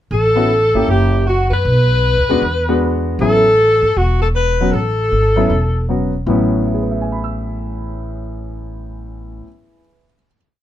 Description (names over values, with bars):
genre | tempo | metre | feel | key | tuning
jazz, small-group swing and bop | 156 BPM | 4/4 | swing 64% on 8ths | A major | A4 = 440 Hz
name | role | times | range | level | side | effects
warm alto saxophone | melody | 0.1-5.9 s | F#4 to B4 | -16 LUFS | left 2 dB | none
clear alto saxophone | second line | 0.1-5.9 s | F#4 to B4 | -21 LUFS | right 3 dB | none
upright bass | bass | 0.1-9.4 s | E1 to F#2 | -18 LUFS | equal | none
warm baby grand piano | accompaniment | 0.4-10.4 s | A2 to E6 | -19 LUFS | left 1 dB | none
room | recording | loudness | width
light reverb | none | -13 LUFS | side -12 dB against mid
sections
0.1-6.3 A section; 6.3-9.4 final chord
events
none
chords
0.1 A6; 0.9 F#7b9; 1.7 Bm; 2.4 E9; 3.2 A6